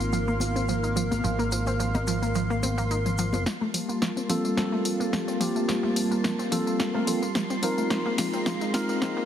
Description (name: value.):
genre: nu-disco, nu disco.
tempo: 108 BPM.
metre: 4/4.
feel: swing 54% on 16ths.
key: G minor.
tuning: A4 = 440 Hz.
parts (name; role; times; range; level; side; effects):
mellow tine electric piano; accompaniment; 0.0-9.3 s; Bb3 to Bb4; -30 LUFS; equal; phaser, slapback echo.
lush unison pad; sustained chords; 0.0-9.3 s; G3 to C6; -30 LUFS; equal; chorus, vintage 12-bit sampler grit.
analog pluck; arpeggios; 0.0-9.2 s; F3 to Eb4; -31 LUFS; equal; chorus, tape echo.
fingered electric bass with an envelope filter; bass; 0.0-3.4 s; Ab1; -28 LUFS; equal; none.
house drum kit; drums; 0.0-9.1 s; hi-hat, snare drum, tambourine; -31 LUFS; equal; studio reverb.
tube shaker and congas; percussion; 0.0-3.4 s; none; -34 LUFS; left 2 dB; none.
room: light reverb.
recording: heavily compressed radio sound, high-pass filter.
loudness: -24 LUFS.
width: side -9 dB against mid.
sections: 0.0-3.5 A section; 3.5-9.3 B section.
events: build-up 3.5-9.3; drum fill 3.5-9.3; filter sweep on analog synth pad 3.5-9.3; filter sweep on synth arpeggio sound 3.5-9.3.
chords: 0.0 Ab69; 3.5 Gm11; 7.9 Ab69.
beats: 0.13 0.69 | 1.24 1.80 2.35 2.91 | 3.46 4.02 4.57 5.13 | 5.68 6.24 6.80 7.35 | 7.91 8.46 9.02.